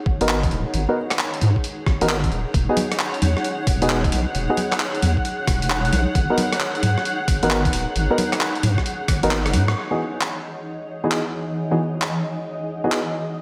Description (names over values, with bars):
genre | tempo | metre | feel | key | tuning
UK garage, two-step garage | 133 BPM | 4/4 | swing 66% on 16ths | unclear | A4 = 440 Hz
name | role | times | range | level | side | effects
granular cloud pad | texture | 0.0-13.4 s | E3 to F#5 | -31 LUFS | equal | built-in reverb, sidechain pumping
deep soft wobble bass | bass | 0.1-9.7 s | D#1 to G#2 | -24 LUFS | equal | chorus
electronic kick drum | drums | 0.1-9.2 s | none | -24 LUFS | equal | none
dark grand piano | stabs | 0.2-13.0 s | E3 to A#4 | -26 LUFS | equal | analog delay
boom bap sampler-style drum kit | drums | 0.2-13.0 s | congas, handclaps, hi-hat, rim click | -27 LUFS | equal | none
soft string machine | sustained chords | 3.1-13.4 s | D#5 to F#5 | -32 LUFS | equal | ensemble chorus, sidechain pumping
room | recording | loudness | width
moderate lush hall reverb, RT60 2.0 s | dreamy mix soaked in reverb | -21 LUFS | mono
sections
0.0-9.8 A section; 9.8-13.4 B section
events
kick drops out 9.3-9.8; drum fill 9.3-9.8; band accent 9.6; filter sweep on string machine 9.8-13.4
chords
0.0 G#7(no3); 2.5 Emaj9; 6.2 G#7(no3); 9.8 Emaj9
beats
0.29 | 0.74 1.19 1.64 2.09 | 2.54 2.99 3.44 3.90 | 4.35 4.80 5.25 5.70 | 6.15 6.60 7.05 7.50 | 7.96 8.41 8.86 9.31 | 9.76 10.21 10.66 11.11 | 11.56 12.02 12.47 12.92 | 13.37